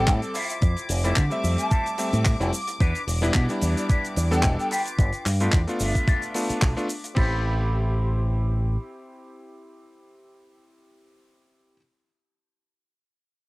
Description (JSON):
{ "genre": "nu-disco, nu disco", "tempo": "110 BPM", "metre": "4/4", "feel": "swing 55% on 16ths", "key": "A minor", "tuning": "A4 = 440 Hz", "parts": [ { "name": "breathy mellow jazz flute", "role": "melody", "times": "0.0-6.3 s", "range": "D5 to A5", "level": "-31 LUFS", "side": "equal", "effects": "cassette tape, tape echo" }, { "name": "bright electric grand piano", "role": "accompaniment", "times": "0.0-11.8 s", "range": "G3 to B5", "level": "-29 LUFS", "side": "equal", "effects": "sidechain pumping, cassette tape" }, { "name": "dark studio string section", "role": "sustained chords", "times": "0.0-7.2 s", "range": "D6", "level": "-36 LUFS", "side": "left 1 dB", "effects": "sidechain pumping, cassette tape" }, { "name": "fingered electric bass with an envelope filter", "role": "bass", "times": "0.0-8.8 s", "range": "E1 to D3", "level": "-24 LUFS", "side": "equal", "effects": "none" }, { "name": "damped 70s drum kit", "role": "drums", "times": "0.1-7.3 s", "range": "crash cymbal, handclaps, hi-hat, shaker", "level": "-31 LUFS", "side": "equal", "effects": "small room ambience" }, { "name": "electronic kick drum", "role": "drums", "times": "0.1-7.3 s", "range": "none", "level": "-21 LUFS", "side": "equal", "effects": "overdrive, small room ambience" }, { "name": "electric guitar with an envelope filter", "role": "riff", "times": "0.3-11.8 s", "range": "D4 to D5", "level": "-33 LUFS", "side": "left 2 dB", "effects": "wide subtle chorus, cassette tape" } ], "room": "light reverb", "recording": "home recording on cassette", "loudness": "-21 LUFS", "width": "side -21 dB against mid", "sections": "0.0-7.2 A section; 7.2-11.5 B section", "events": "drop 0.0-7.2", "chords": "0.3 Fmaj7; 2.8 Em7; 4.7 G7; 7.2 Am7" }